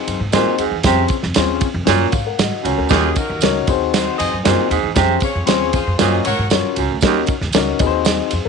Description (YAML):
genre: uptempo 1960s-style soul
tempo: 116 BPM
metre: 4/4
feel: straight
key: unclear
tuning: A4 = 440 Hz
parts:
  - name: dark upright piano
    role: accompaniment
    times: 0.0-8.5 s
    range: C4 to Ab5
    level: -20 LUFS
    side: left 16 dB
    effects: none
  - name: upright bass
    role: bass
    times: 0.1-8.5 s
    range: Db2 to Ab2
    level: -23 LUFS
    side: equal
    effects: none
  - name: warm soul drum kit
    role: drums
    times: 0.1-8.4 s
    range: kick drum, ride cymbal, snare drum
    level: -19 LUFS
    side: right 5 dB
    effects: none
  - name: tambourine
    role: percussion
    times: 0.1-8.4 s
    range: none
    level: -32 LUFS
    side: right 13 dB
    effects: none
  - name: warm baritone saxophone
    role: riff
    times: 0.3-7.2 s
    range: Eb2 to C3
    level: -19 LUFS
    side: right 15 dB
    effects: none
  - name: warm horn section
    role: second line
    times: 2.9-6.5 s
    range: Db4 to Eb5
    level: -23 LUFS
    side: left 1 dB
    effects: none
room: small room ambience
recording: 1960s-style stereo with parts hard left and right, nothing above 10.7 kHz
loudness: -14 LUFS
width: side -5 dB against mid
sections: 0.0-8.5 A section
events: upright piano fill 1.9-2.9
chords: 0.0 Ab7; 0.8 Dbmaj7/F; 1.9 Gbmaj7; 2.9 Ebm7; 3.7 Ab7/Eb; 5.0 Dbmaj7/F; 6.0 Gbmaj7; 7.0 Ebm7; 7.8 Ab7/Eb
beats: 0.33 | 0.85 1.36 1.88 2.39 | 2.90 3.42 3.94 4.45 | 4.97 5.48 6.00 6.51 | 7.03 7.54 8.06